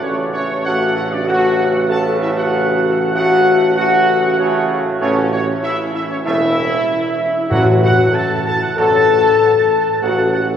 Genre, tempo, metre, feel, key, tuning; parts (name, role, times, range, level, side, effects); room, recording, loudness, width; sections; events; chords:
classical; 96 BPM; 4/4; straight; A4 = 441 Hz
warm trumpet section; melody; 0.0-10.5 s; C#5 to A5; -20 LUFS; right 3 dB
clear trombone section; sustained chords; 0.0-10.2 s; C#3 to A3; -25 LUFS; right 3 dB
mellow French horn section; sustained chords; 0.0-10.6 s; C#4 to A4; -16 LUFS; left 3 dB
clear tuba; bass; 0.0-10.5 s; E1 to A1; -21 LUFS; right 3 dB
timpani; percussion; 7.5-8.4 s; A2; -21 LUFS; equal
wet cathedral reverb, RT60 5.3 s; recorded in a church or concert hall; -13 LUFS; side -8 dB against mid
0.0-10.6 A section
0.0 F#m/A; 5.0 A; 7.5 D/A; 10.0 F#m/A